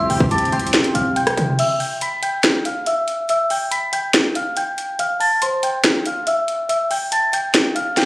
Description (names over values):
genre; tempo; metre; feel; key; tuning
hip hop, trap; 141 BPM; 4/4; half-time; E phrygian; A4 = 443 Hz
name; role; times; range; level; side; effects
celesta; melody; 0.0-8.1 s; C5 to B6; -19 LUFS; equal; low-pass filter, tape echo
soft synth bell; second line; 0.0-1.5 s; C6 to D6; -28 LUFS; equal; chorus, phaser, tape echo
warm analog pad; sustained chords; 0.0-1.6 s; C4 to G4; -25 LUFS; equal; chorus, tremolo
hard-hitting 808-style bass; bass; 0.0-1.6 s; B1 to C3; -22 LUFS; equal; none
trap drum kit; drums; 0.1-8.1 s; crash cymbal, hi-hat, kick drum, rim click, snare drum; -19 LUFS; equal; none
room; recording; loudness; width
light reverb, digital ambience; recorded on a phone in the room, club reverb; -16 LUFS; side -22 dB against mid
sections
0.0-1.6 A section; 1.6-8.1 B section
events
kick muted 1.6-8.1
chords
0.0 C; 1.6 Em; 5.0 Fmaj7; 6.7 Emadd11